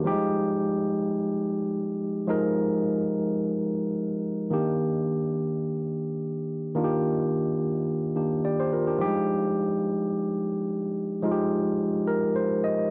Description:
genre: disco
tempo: 107 BPM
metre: 4/4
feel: straight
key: Eb major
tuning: A4 = 443 Hz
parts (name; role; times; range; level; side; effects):
- barky tine electric piano; solo; 0.0-12.9 s; Eb3 to Eb5; -27 LUFS; equal; overdrive, cassette tape
room: moderate studio reverb, RT60 0.5 s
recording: home recording on cassette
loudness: -27 LUFS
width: mono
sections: 0.0-4.5 A section; 4.5-12.9 B section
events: tine electric piano fill 11.8-12.9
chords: 0.1 Fm9; 4.5 Ebmaj7; 9.0 Fm9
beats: | 0.06 0.61 1.17 1.73 | 2.29 2.84 3.40 3.96 | 4.52 5.08 5.64 6.20 | 6.75 7.32 7.88 8.44 | 8.99 9.55 10.11 10.67 | 11.23 11.79 12.35

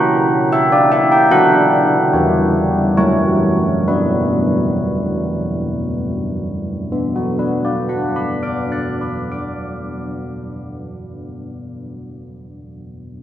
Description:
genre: classical, tune for church bells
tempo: 55-76 BPM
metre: 3/4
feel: straight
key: B minor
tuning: A4 = 440 Hz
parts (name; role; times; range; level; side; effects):
- old church bells; solo; 0.0-11.6 s; E3 to F#6; -15 LUFS; equal; none
room: moderate concert hall reverb, RT60 2.1 s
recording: close, detailed microphones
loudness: -14 LUFS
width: side -11 dB against mid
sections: 0.0-6.9 A section; 6.9-10.1 B section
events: slowing down 0.1-6.9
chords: 0.0 F#7/C#; 1.3 Bm/D; 2.1 C#dim/E; 3.0 F#7; 3.9 Bm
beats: 0.52 | 1.32 2.13 2.97 | 3.87 4.84 5.85 | 6.92 7.99 9.06

